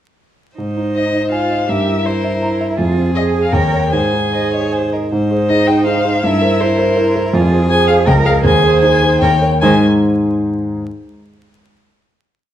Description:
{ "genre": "quick classical-period movement for piano quartet", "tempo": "145-166 BPM", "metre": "3/4", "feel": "rubato", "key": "Ab major", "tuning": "A4 = 440 Hz", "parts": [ { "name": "clear violin", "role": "second line", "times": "0.6-9.8 s", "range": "Ab4 to Eb5", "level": "-22 LUFS", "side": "left 1 dB", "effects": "none" }, { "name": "rich cello", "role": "second line", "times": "0.6-9.8 s", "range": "Eb3 to Bb4", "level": "-20 LUFS", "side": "right 6 dB", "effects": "none" }, { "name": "warm concert grand piano", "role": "accompaniment", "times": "0.6-10.8 s", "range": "Db2 to Bb5", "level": "-14 LUFS", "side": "equal", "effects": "none" }, { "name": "rich violin", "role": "melody", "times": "1.0-9.8 s", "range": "C5 to Ab5", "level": "-18 LUFS", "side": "left 4 dB", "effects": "none" } ], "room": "wet recital hall reverb, RT60 1.3 s", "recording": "dark, warm production, vinyl crackle", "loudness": "-12 LUFS", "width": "side -11 dB against mid", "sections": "0.6-5.1 A section; 5.1-9.6 A section; 9.6-10.8 final chord", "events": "none", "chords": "0.6 Ab; 1.7 C7/G; 2.8 Fm; 3.5 Eb7; 3.9 Ab; 6.2 C7/G; 7.3 Fm; 8.1 Bbm7/Db; 8.4 Ab/Eb; 9.2 Eb7; 9.6 Ab", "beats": "| 0.58 0.95 1.32 | 1.69 2.06 2.42 | 2.78 3.15 3.53 | 3.92 4.33 4.73 | 5.12 5.50 5.87 | 6.24 6.60 6.97 | 7.33 7.70 8.07 | 8.44 8.83 9.22 | 9.62 10.01 10.40" }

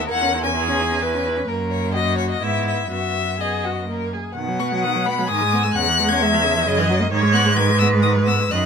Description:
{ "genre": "quick classical-period movement for string quartet", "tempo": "128 BPM", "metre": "3/4", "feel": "uneven beats, rubato", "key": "B major", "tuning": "A4 = 440 Hz", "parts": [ { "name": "clear violin", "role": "melody", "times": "0.0-8.7 s", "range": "C#5 to G#6", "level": "-22 LUFS", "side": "left 6 dB", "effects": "none" }, { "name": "rich violin", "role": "second line", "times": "0.0-8.7 s", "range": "E4 to G#5", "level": "-23 LUFS", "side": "left 2 dB", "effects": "none" }, { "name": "rich viola", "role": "accompaniment", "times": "0.0-8.7 s", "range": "C#3 to E4", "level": "-24 LUFS", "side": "right 2 dB", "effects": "none" }, { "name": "rich cello", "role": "bass", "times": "0.0-8.7 s", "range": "D#2 to B2", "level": "-22 LUFS", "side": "right 3 dB", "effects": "none" } ], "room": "moderate studio reverb, RT60 0.8 s", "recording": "minimal, uncompressed stereo recording", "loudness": "-17 LUFS", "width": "side -6 dB against mid", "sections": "0.0-4.4 A section; 4.4-8.7 B section", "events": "none", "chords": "0.1 C#m/E; 1.5 F#; 2.4 E/G#; 2.9 B/F#; 3.9 F#; 4.4 B; 5.3 G#m; 5.8 C#m/E; 6.7 F#7; 7.1 G#m", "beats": "| 0.10 0.55 1.02 | 1.48 1.94 2.42 | 2.91 3.40 3.88 | 4.36 4.83 5.29 | 5.75 6.21 6.67 | 7.12 7.58 8.04 | 8.51" }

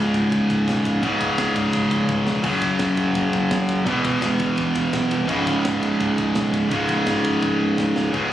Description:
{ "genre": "heavy metal", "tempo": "169 BPM", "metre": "4/4", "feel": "straight", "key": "C# minor", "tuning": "A4 = 445 Hz", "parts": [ { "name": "distorted electric guitar", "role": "riff", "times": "0.0-8.3 s", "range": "C#2 to F#3", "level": "-19 LUFS", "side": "equal", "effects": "overdrive" }, { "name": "fuzz picked electric bass", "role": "bass", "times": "0.0-8.3 s", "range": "C#1 to E2", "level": "-30 LUFS", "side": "right 1 dB", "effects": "overdrive" }, { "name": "tight metal drum kit", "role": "drums", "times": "0.1-8.2 s", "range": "crash cymbal, kick drum, ride cymbal, snare drum, toms", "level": "-30 LUFS", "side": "equal", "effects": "none" } ], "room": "studio ambience", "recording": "recorded on a phone in the room, compression", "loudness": "-18 LUFS", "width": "side -12 dB against mid", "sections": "0.0-8.1 A section", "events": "drum fill 2.1-2.4, 7.4-8.1", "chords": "0.0 C#5; 2.4 F#5; 3.9 E5; 5.3 C#5", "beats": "0.31 0.67 | 1.02 1.38 1.73 2.09 | 2.44 2.80 3.15 3.51 | 3.87 4.22 4.58 4.93 | 5.29 5.64 6.00 6.36 | 6.71 7.07 7.43 7.78 | 8.14" }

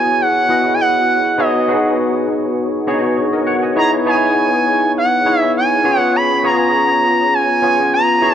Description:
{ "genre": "pop", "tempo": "101 BPM", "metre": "4/4", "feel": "swing 54% on 16ths", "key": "C# dorian", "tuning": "A4 = 440 Hz", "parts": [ { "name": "expressive portamento lead", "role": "melody", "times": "0.0-8.3 s", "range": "D#5 to B5", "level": "-14 LUFS", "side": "right 1 dB", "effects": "chorus" }, { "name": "barky tine electric piano", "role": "accompaniment", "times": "0.0-8.3 s", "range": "B3 to G#5", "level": "-16 LUFS", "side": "left 1 dB", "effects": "overdrive, ensemble chorus" } ], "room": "moderate plate reverb, RT60 2.7 s", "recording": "dark, warm production", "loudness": "-12 LUFS", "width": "side -9 dB against mid", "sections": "0.0-8.3 A section", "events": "none", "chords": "0.0 F#9sus4; 1.4 B69; 3.8 C#m9; 5.8 C#7", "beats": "0.19 0.79 | 1.38 1.98 2.57 3.17 | 3.76 4.36 4.95 5.55 | 6.14 6.74 7.33 7.93" }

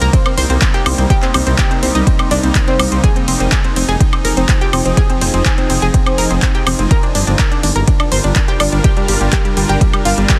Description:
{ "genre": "progressive house", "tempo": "124 BPM", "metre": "4/4", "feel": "straight", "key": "F dorian", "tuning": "A4 = 440 Hz", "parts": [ { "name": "shimmering ambient pad", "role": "sustained chords", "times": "0.0-10.4 s", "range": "C3 to Bb4", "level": "-23 LUFS", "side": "equal", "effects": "chorus, built-in reverb, vintage 12-bit sampler grit, sidechain pumping" }, { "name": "analog pluck", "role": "arpeggios", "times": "0.0-10.4 s", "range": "G3 to C5", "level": "-21 LUFS", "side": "equal", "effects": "subtle chorus, sidechain pumping, delay" }, { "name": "dark detuned saw bass", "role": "bass", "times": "0.0-10.2 s", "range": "F1 to C2", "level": "-18 LUFS", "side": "equal", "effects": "sidechain pumping" }, { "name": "deep house drum kit", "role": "drums", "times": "0.0-10.4 s", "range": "handclaps, hi-hat, ride cymbal, woodblock", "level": "-22 LUFS", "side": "equal", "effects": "none" }, { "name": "electronic kick drum", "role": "drums", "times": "0.1-10.4 s", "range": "none", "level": "-16 LUFS", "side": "equal", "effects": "none" } ], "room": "little or no reverb", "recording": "dense, heavily limited modern master", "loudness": "-14 LUFS", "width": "mono", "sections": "0.0-10.4 A section", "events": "none", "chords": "0.0 Cm7; 3.0 Fm7; 6.9 Gm7", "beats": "0.13 0.62 | 1.10 1.59 2.07 2.55 | 3.04 3.52 4.00 4.49 | 4.97 5.46 5.94 6.42 | 6.91 7.39 7.88 8.36 | 8.84 9.33 9.81 10.29" }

